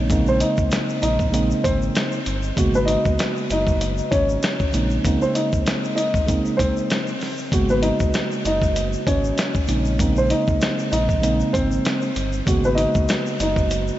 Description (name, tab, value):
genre	hip hop, boom-bap hip-hop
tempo	97 BPM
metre	4/4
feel	swing 55% on 16ths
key	unclear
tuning	A4 = 443 Hz
part	dark upright piano	melody	0.0-14.0 s	B3 to D#5	-23 LUFS	equal	high-pass filter, low-pass filter, ping-pong delay
part	mellow tine electric piano	accompaniment	0.0-14.0 s	C#3 to F#4	-24 LUFS	right 2 dB	high-pass filter, low-pass filter
part	sub bass with octave	bass	0.0-13.9 s	F#1 to A#1	-24 LUFS	equal	none
part	dusty soul sampler-style drum kit	drums	0.1-13.9 s	hi-hat, kick drum, snare drum	-23 LUFS	equal	none
part	tube shaker	percussion	0.1-14.0 s	none	-42 LUFS	left 6 dB	none
room	moderate huge ambient reverb, RT60 7.4 s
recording	dreamy mix soaked in reverb, vinyl crackle, nothing above 7.8 kHz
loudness	-18 LUFS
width	side -13 dB against mid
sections	0.0-14.0 A section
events	none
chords	0.0 A#m11; 2.6 G#m11; 4.7 A#m11; 7.5 G#m11; 9.7 A#m11; 12.5 G#m11